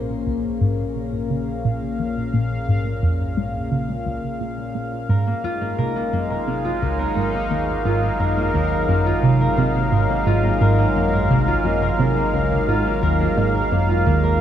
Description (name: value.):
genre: ambient, sequencer-driven space music.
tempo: 87 BPM.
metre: 4/4.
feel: straight.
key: unclear.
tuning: A4 = 438 Hz.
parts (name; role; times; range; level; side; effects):
sweeping resonant pad; sustained chords; 0.0-14.4 s; Bb2 to F5; -23 LUFS; left 1 dB; chorus, shimmer reverb.
tight sequenced synth; riff; 0.0-14.4 s; C2 to Db3; -21 LUFS; right 1 dB; chorus, phaser, cassette tape, analog delay.
round analog bass; bass; 0.0-14.4 s; Ab1 to Bb1; -30 LUFS; equal; tube saturation.
concert harp; arpeggios; 5.1-14.4 s; Bb3 to Bb4; -25 LUFS; moving between left 3 dB and right 6 dB; auto-pan, analog delay, shimmer reverb.
room: wet spring reverb, RT60 2.4 s.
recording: echo-heavy mix, cassette tape.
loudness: -18 LUFS.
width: side -10 dB against mid.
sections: 0.0-14.4 A section.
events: fade-in on analog synth bass 0.0-14.4; filter sweep on synth arpeggio sound 0.0-14.4.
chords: 0.0 Bbm7; 5.1 Ab7sus4.